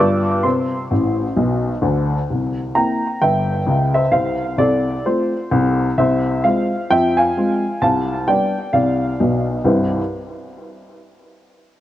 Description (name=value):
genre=jazz, stride piano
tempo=130 BPM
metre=4/4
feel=swing 58% on 8ths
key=C major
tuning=A4 = 436 Hz
part: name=dark upright piano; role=solo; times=0.0-10.0 s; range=G1 to D6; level=-16 LUFS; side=equal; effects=tape echo
room=moderate studio reverb, RT60 0.5 s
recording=cassette tape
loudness=-16 LUFS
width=side -13 dB against mid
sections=0.0-2.3 A section; 2.3-9.7 B section; 9.7-11.5 C section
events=upright piano fill 0.9-2.3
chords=0.0 G7; 0.4 Amadd9; 2.3 C7; 4.1 F/C; 6.0 Fm/C; 7.8 G7/C; 9.7 C